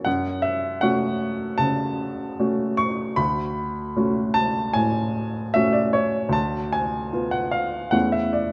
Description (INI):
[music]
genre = classical, romantic character piece for solo piano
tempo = 76 BPM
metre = 4/4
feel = rubato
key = unclear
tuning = A4 = 442 Hz
[part]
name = warm upright piano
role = solo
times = 0.0-8.5 s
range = D2 to C#6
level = -23 LUFS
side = equal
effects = none
[sound]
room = moderate concert hall reverb, RT60 1.9 s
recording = none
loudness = -23 LUFS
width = mono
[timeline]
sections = 0.0-8.5 A section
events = none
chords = 0.1 F#m; 3.2 Dmaj7; 6.3 Bdim/D; 7.9 A/E